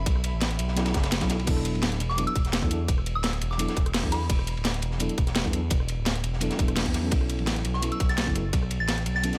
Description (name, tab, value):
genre	liquid drum and bass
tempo	170 BPM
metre	4/4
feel	straight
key	unclear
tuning	A4 = 440 Hz
part	glassy FM pad	sustained chords	0.0-1.4 s	A4 to B5	-45 LUFS	equal	ensemble chorus, built-in reverb
part	smooth gliding synth bass	bass	0.0-9.3 s	D1 to E2	-31 LUFS	equal	tube saturation
part	crunchy breakbeat drum kit	drums	0.1-9.4 s	hi-hat, ride cymbal, snare drum	-38 LUFS	equal	high-pass filter on cymbals, studio ambience, high-pass filter on hats, high-pass filter on snare, high-pass filter on room
part	drum and bass drum kit	drums	0.1-9.4 s	crash cymbal, hi-hat, rim click, snare drum	-32 LUFS	equal	overdrive, studio ambience
part	electronic kick drum	drums	0.1-8.6 s	none	-28 LUFS	equal	overdrive, studio ambience
part	mellow FM electric piano	accompaniment	0.8-9.4 s	F#3 to A4	-35 LUFS	equal	chorus, delay
part	soft synth bell	melody	2.1-4.6, 7.7-9.4 s	B5 to A6	-35 LUFS	equal	chorus, phaser, dub echo
room	studio reverb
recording	none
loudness	-26 LUFS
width	mono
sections	0.0-1.5 A section; 1.5-9.4 A section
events	drop 0.0-1.5, 1.5-9.4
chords	0.0 B9sus4; 1.5 E9sus4; 7.1 B9sus4